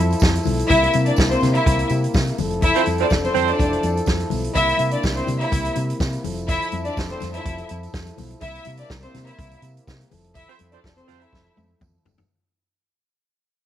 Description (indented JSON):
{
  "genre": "disco",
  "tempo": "124 BPM",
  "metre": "4/4",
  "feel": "straight",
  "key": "F major",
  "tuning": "A4 = 439 Hz",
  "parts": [
    { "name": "warm French horn section", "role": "sustained chords", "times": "0.0-12.3 s", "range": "C3 to A4", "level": "-27 LUFS", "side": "left 1 dB", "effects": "none" },
    { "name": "fingered electric bass", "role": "bass", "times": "0.0-12.2 s", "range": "E1 to C3", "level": "-25 LUFS", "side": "equal", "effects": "none" },
    { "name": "vintage drum kit", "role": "drums", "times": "0.1-12.3 s", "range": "hi-hat, kick drum, snare drum, toms", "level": "-23 LUFS", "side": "equal", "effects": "none" },
    { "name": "tambourine", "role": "percussion", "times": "0.1-12.3 s", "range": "none", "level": "-42 LUFS", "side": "right 16 dB", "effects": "none" },
    { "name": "congas", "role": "percussion", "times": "0.2-12.2 s", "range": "none", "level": "-32 LUFS", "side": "left 9 dB", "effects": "none" },
    { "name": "clear symphonic string section", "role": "second line", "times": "0.7-11.5 s", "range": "C4 to E5", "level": "-22 LUFS", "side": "left 1 dB", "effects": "none" },
    { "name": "mellow horn section", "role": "stabs", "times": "2.8-3.5, 10.5-11.2 s", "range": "C4 to C5", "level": "-22 LUFS", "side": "right 12 dB", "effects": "tube saturation" }
  ],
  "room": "moderate spring reverb, RT60 1.8 s, studio reverb",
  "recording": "1960s-style stereo with parts hard left and right",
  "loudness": "-18 LUFS",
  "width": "side -11 dB against mid",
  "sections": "0.0-12.3 A section",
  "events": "fade-out 0.0-12.3; band accent 2.6-4.6, 10.4-12.3; drum fill 11.3-12.3",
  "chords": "0.0 Fmaj7; 0.7 C7; 2.4 Fmaj7; 4.6 C7; 6.2 Fmaj7; 8.4 C7; 10.1 Fmaj7",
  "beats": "0.22 | 0.70 1.18 1.67 2.15 | 2.63 3.11 3.59 4.08 | 4.56 5.04 5.52 6.00 | 6.49 6.97 7.45 7.93 | 8.42 8.90 9.38 9.87 | 10.35 10.84 11.32 11.80"
}